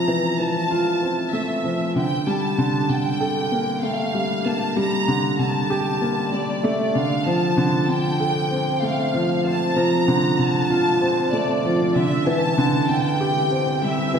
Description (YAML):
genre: electronica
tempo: 96 BPM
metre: 4/4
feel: straight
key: unclear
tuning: A4 = 440 Hz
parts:
  - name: clear studio violin section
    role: melody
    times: 0.0-14.2 s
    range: D5 to Bb5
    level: -25 LUFS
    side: right 1 dB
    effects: shimmer reverb
  - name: dark upright piano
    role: riff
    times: 0.0-14.2 s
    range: D3 to A4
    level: -20 LUFS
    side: equal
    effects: shimmer reverb
room: wet recital hall reverb, RT60 1.4 s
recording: none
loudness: -19 LUFS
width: side -7 dB against mid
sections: 0.0-14.2 A section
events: build-up 0.0-14.2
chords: 0.0 Fmaj7; 2.0 Gmadd9; 7.0 Dm7; 12.0 Cadd9